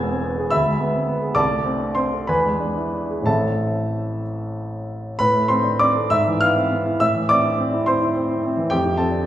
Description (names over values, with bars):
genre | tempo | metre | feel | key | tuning
classical, romantic character piece for solo piano | 60-74 BPM (dotted quarters) | 6/8 | rubato | A minor | A4 = 440 Hz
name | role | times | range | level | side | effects
warm grand piano | solo | 0.0-9.3 s | E1 to G#6 | -18 LUFS | equal | none
room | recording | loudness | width
wet recital hall reverb, RT60 1.7 s | heard from further back in the room | -18 LUFS | side -12 dB against mid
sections
0.0-5.2 A section; 5.2-9.3 B section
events
none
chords
0.0 E; 0.5 E7/D; 1.4 Am/C; 2.3 E7; 3.3 Am; 6.1 E/G#; 7.0 Am; 8.7 F